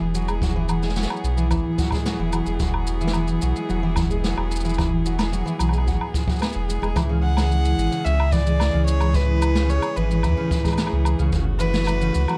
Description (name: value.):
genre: folktronica.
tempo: 110 BPM.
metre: 4/4.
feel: straight.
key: E major.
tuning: A4 = 442 Hz.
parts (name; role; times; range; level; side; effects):
clear string quartet; sustained chords; 0.0-12.4 s; C#3 to G#4; -34 LUFS; equal; none.
warm sub bass; bass; 0.0-12.3 s; E1 to E2; -24 LUFS; equal; none.
fingerpicked twelve-string acoustic guitar; arpeggios; 0.1-12.4 s; C#3 to B3; -28 LUFS; equal; delay.
shaker, woodblock and snare drum; drums; 0.1-12.4 s; none; -31 LUFS; equal; none.
kick drum; drums; 0.4-11.4 s; none; -28 LUFS; equal; none.
warm violin; melody; 7.2-12.4 s; B4 to F#5; -29 LUFS; equal; delay.
room: light reverb, small room reverb.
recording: dark, warm production.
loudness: -22 LUFS.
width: mono.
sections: 0.0-12.4 A section.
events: none.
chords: 0.0 Eadd9; 7.0 C#m; 11.3 F#m7.